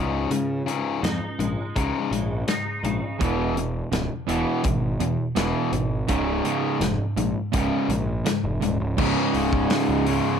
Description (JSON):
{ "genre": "quiet-loud alternative rock", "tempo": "83 BPM", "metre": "4/4", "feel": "straight", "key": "unclear", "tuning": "A4 = 436 Hz", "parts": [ { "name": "twangy electric guitar", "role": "arpeggios", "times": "0.0-3.2 s", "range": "Db2 to Eb4", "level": "-31 LUFS", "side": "right 2 dB", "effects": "ensemble chorus" }, { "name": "biting overdriven guitar", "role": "riff", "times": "0.0-10.4 s", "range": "Db2 to E3", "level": "-26 LUFS", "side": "left 8 dB", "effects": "spring reverb" }, { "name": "fuzz picked electric bass", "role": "bass", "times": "0.0-10.2 s", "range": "Db1 to Db3", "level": "-28 LUFS", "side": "equal", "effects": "overdrive" }, { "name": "loose indie drum kit", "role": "drums", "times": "0.3-10.2 s", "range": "crash cymbal, hi-hat, kick drum, snare drum", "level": "-28 LUFS", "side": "equal", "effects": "none" }, { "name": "overdriven semi-hollow guitar", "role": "riff", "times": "3.2-10.4 s", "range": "Db2 to E3", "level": "-26 LUFS", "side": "right 10 dB", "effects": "none" }, { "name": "overdriven electric guitar", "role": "riff", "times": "9.0-10.4 s", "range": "Db2 to Db3", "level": "-26 LUFS", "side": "right 3 dB", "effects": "spring reverb" } ], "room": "light reverb", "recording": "none", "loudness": "-22 LUFS", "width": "side -7 dB against mid", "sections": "0.0-9.0 A section; 9.0-10.4 B section", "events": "none", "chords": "0.0 Dbsus2; 3.2 E; 6.1 Db5" }